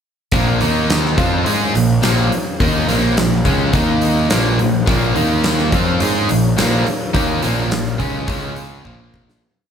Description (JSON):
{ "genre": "classic rock", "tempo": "106 BPM", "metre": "4/4", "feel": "straight", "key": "Bb minor", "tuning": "A4 = 440 Hz", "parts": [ { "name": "crunchy overdriven guitar", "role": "riff", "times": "0.3-9.4 s", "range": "Bb2 to Ab4", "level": "-20 LUFS", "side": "right 7 dB", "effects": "none" }, { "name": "distorted electric guitar", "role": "riff", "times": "0.3-9.4 s", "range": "Bb2 to Ab4", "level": "-20 LUFS", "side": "left 6 dB", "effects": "overdrive" }, { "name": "fuzz picked electric bass", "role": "bass", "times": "0.3-9.4 s", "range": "Bb1 to Ab2", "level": "-20 LUFS", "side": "equal", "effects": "overdrive" }, { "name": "huge arena drum kit", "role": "drums", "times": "0.3-9.4 s", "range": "hi-hat, kick drum, snare drum", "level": "-20 LUFS", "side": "equal", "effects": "none" }, { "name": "mellow tonewheel organ", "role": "sustained chords", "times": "0.6-9.4 s", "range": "Ab3 to Eb5", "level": "-28 LUFS", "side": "left 1 dB", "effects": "slow rotary speaker, overdrive, chorus vibrato" } ], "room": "moderate large studio reverb, RT60 1.2 s", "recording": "band playing live in one room", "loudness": "-14 LUFS", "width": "side -8 dB against mid", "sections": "0.3-9.4 riff", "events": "fade-out 7.1-9.4; drum fill 8.9-9.4", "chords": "0.3 Bb5; 0.6 Eb5; 1.2 Bbm; 3.7 Eb5; 4.3 Bbm; 5.2 Eb5; 5.7 Bbm; 8.3 Db5; 8.9 Bbm" }